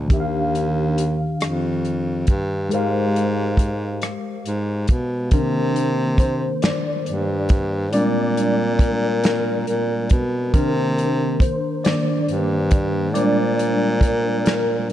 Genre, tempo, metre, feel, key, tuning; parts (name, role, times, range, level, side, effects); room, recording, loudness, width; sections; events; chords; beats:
slow six-eight R&B; 46 BPM (dotted quarters); 6/8; straight; C minor; A4 = 440 Hz
mellow tine electric piano; accompaniment; 0.0-14.9 s; Eb3 to F5; -22 LUFS; left 1 dB; ensemble chorus
mellow baritone saxophone; bass; 0.0-14.9 s; Eb2 to C3; -22 LUFS; equal
warm soul drum kit; drums; 0.1-14.9 s; hi-hat, kick drum, rim click, snare drum; -20 LUFS; equal
moderate plate reverb, RT60 3.4 s; dreamy mix soaked in reverb; -18 LUFS; side -12 dB against mid
0.0-5.3 A section; 5.3-14.9 B section
tine electric piano solo 5.3-14.9
0.1 Ebmaj9; 2.7 Abmaj13; 5.3 Cm9; 7.9 Bb13; 10.5 Cm9; 13.1 Bb13
| 0.10 1.41 | 2.71 4.02 | 5.32 6.62 | 7.93 9.23 | 10.54 11.84 | 13.15 14.45